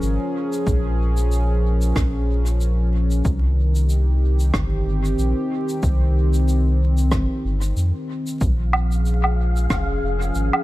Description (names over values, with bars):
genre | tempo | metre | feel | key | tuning
ambient dub | 93 BPM | 4/4 | swing 56% on 16ths | Bb dorian | A4 = 442 Hz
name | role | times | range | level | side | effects
warm analog pad | sustained chords | 0.0-10.6 s | Eb3 to Bb4 | -25 LUFS | equal | chorus
warm sub bass | bass | 0.0-10.5 s | F1 to F2 | -19 LUFS | equal | none
shaker, rim click and woodblock | drums | 0.0-10.6 s | none | -26 LUFS | right 1 dB | dub echo
electronic kick drum | drums | 0.7-9.8 s | none | -23 LUFS | equal | overdrive
wind-like tuned noise texture | texture | 8.8-10.6 s | F5 | -31 LUFS | left 1 dB | built-in reverb
room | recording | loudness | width
small room ambience | dark, warm production, vinyl crackle | -18 LUFS | side -17 dB against mid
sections
0.0-8.4 A section; 8.4-10.6 B section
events
none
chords
0.0 Bbm7; 3.2 Cm7; 8.4 Bbm7